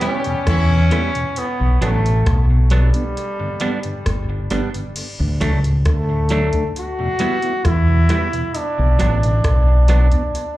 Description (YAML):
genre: roots reggae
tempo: 67 BPM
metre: 4/4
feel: straight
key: unclear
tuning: A4 = 441 Hz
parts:
  - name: bright trombone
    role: melody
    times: 0.0-10.6 s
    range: G3 to F#4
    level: -23 LUFS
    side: equal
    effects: dub echo, slapback echo
  - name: warm horn section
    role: second line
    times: 0.0-1.1 s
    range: E3 to G4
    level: -29 LUFS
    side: left 2 dB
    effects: dub echo, slapback echo
  - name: mellow tonewheel organ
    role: accompaniment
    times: 0.0-10.2 s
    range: D2 to E4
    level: -27 LUFS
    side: left 1 dB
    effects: slow rotary speaker, dub echo, slapback echo
  - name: semi-hollow electric guitar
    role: accompaniment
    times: 0.0-10.1 s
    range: F#3 to E4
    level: -26 LUFS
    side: right 4 dB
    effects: dub echo, slapback echo
  - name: soft vintage rhythm box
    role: drums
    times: 0.0-10.6 s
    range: crash cymbal, hi-hat, kick drum, rim click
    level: -23 LUFS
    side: equal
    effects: overdrive
  - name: deep dub fingered electric bass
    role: bass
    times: 0.5-10.1 s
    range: G1 to E2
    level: -15 LUFS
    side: equal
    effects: none
room: light reverb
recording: live gig heard through the venue's PA, club reverb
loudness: -15 LUFS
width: side -16 dB against mid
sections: 0.0-5.0 A section; 5.0-10.6 B section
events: none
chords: 0.0 Em; 1.4 Bm; 3.2 G; 5.0 D; 6.8 Em; 8.5 Bm